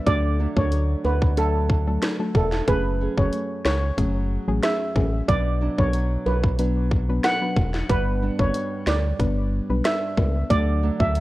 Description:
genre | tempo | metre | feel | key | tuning
dancehall | 92 BPM | 4/4 | straight | unclear | A4 = 440 Hz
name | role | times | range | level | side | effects
nylon-string guitar | arpeggios | 0.0-11.2 s | F#2 to G#4 | -32 LUFS | right 5 dB | none
steel pan | melody | 0.1-11.1 s | A4 to F#5 | -26 LUFS | right 2 dB | ping-pong delay
soft round pluck | accompaniment | 0.1-11.2 s | F#3 to B4 | -28 LUFS | left 2 dB | chorus
organ-like FM bass | bass | 0.1-11.2 s | E1 to D2 | -23 LUFS | equal | none
island pop drum kit | drums | 0.1-11.2 s | hi-hat, kick drum, rim click, snare drum | -24 LUFS | equal | none
bongos | percussion | 0.6-11.1 s | none | -35 LUFS | left 2 dB | none
room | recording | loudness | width
small room ambience | worn, warbling old tape, cassette tape, warbly pitch drift | -20 LUFS | side -17 dB against mid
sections
0.0-11.2 A section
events
none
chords
0.1 D; 2.7 F#madd9; 5.3 Bm; 7.9 G; 10.5 D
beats
| 0.07 0.72 1.37 2.02 | 2.67 3.33 3.98 4.63 | 5.28 5.94 6.59 7.24 | 7.89 8.54 9.20 9.85 | 10.50 11.15

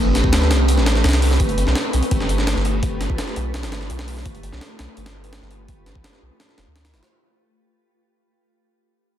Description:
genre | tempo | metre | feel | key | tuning
drum and bass, jungle | 168 BPM | 4/4 | straight | unclear | A4 = 441 Hz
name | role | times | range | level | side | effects
soft dub sub bass | bass | 0.0-7.0 s | F1 to D2 | -20 LUFS | equal | none
jungle sampler-style drum kit | drums | 0.1-7.1 s | hi-hat, kick drum, snare drum | -22 LUFS | equal | overdrive
crunchy breakbeat drum kit | drums | 0.2-7.1 s | hi-hat, snare drum, tambourine | -35 LUFS | equal | none
room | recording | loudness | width
light reverb | dense, heavily limited modern master | -17 LUFS | side -11 dB against mid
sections
0.0-7.1 A section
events
fade-out 0.0-7.1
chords
none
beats
0.33 0.69 1.04 | 1.40 1.76 2.11 2.47 | 2.83 3.19 3.54 3.90 | 4.26 4.61 4.97 5.33 | 5.69 6.04 6.40 6.76

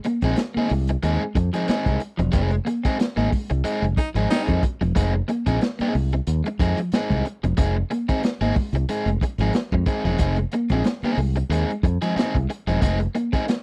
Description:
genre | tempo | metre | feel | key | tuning
funk | 92 BPM | 4/4 | swing 56% on 16ths | F minor | A4 = 444 Hz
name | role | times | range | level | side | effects
clean electric guitar | riff | 0.0-13.5 s | F3 to C4 | -30 LUFS | equal | spring reverb
crunchy breakbeat drum kit | drums | 0.0-13.6 s | hi-hat, kick drum, snare drum | -25 LUFS | equal | none
overdriven electric guitar | accompaniment | 0.1-13.5 s | Ab3 to Ab4 | -28 LUFS | equal | none
fingered electric bass | bass | 0.2-13.4 s | E1 to F2 | -25 LUFS | equal | none
clear baritone saxophone | second line | 4.0-4.5 s | Eb4 | -29 LUFS | equal | none
room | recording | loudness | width
little or no reverb | dry, close 1970s-style studio recording | -23 LUFS | mono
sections
0.0-13.6 A section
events
band accent 2.3-5.0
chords
0.0 Fm7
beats
0.37 1.03 1.68 | 2.34 2.99 3.65 4.30 | 4.96 5.61 6.27 6.92 | 7.58 8.23 8.89 9.54 | 10.20 10.85 11.51 12.16 | 12.81 13.47

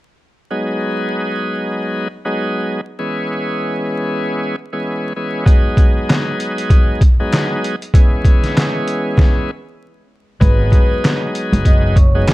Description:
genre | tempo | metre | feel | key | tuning
hip hop, boom-bap hip-hop | 97 BPM | 4/4 | swing 57% on 16ths | G# minor | A4 = 440 Hz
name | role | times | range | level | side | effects
bright tonewheel organ | accompaniment | 0.5-12.3 s | E3 to G#4 | -19 LUFS | equal | overdrive, slow rotary speaker, high-pass filter, low-pass filter, plate reverb
trip hop sampler-style drum kit | drums | 5.5-12.3 s | handclaps, hi-hat, kick drum, snare drum | -12 LUFS | equal | none
vibraphone with soft mallets | melody | 10.4-12.2 s | B4 to D#6 | -23 LUFS | left 1 dB | high-pass filter, low-pass filter, slapback echo, plate reverb
upright bass | bass | 10.4-12.2 s | F#1 to G#1 | -16 LUFS | equal | none
room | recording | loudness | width
light reverb | dark, warm production, vinyl crackle | -14 LUFS | side -18 dB against mid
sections
0.5-10.4 A section; 10.4-12.3 B section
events
stop 9.2-10.4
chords
0.5 G#m7; 3.0 C#m7; 5.5 G#m7; 7.9 C#m7; 10.4 G#m7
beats
| 0.52 1.14 1.75 2.37 | 2.99 3.61 4.23 4.85 | 5.47 6.08 6.70 7.32 | 7.94 8.56 9.18 9.80 | 10.41 11.03 11.65 12.27

